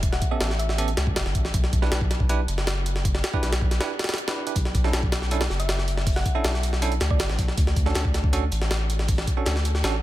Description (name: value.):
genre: drum and bass, jungle.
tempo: 159 BPM.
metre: 4/4.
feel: straight.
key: B minor.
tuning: A4 = 438 Hz.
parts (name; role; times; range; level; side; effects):
thumb-piano-like synth pluck; melody; 0.0-0.8, 5.6-7.5 s; D5 to F#5; -36 LUFS; equal; chorus, dub echo.
saturated sub bass; bass; 0.0-10.0 s; E1 to D2; -25 LUFS; equal; none.
jungle sampler-style drum kit; drums; 0.0-9.9 s; hi-hat, kick drum, snare drum; -24 LUFS; equal; none.
bell-like tine electric piano; stabs; 0.3-9.9 s; B3 to B4; -31 LUFS; right 5 dB; medium stereo tremolo, dub echo.
crunchy breakbeat drum kit; drums; 4.6-9.9 s; hi-hat, snare drum; -41 LUFS; left 1 dB; none.
room: digital ambience.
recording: none.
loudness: -21 LUFS.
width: side -15 dB against mid.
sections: 0.0-10.0 A section.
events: break 3.8-4.6.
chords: 0.0 A9; 1.5 G6; 4.6 Bm11; 7.6 Dmaj7.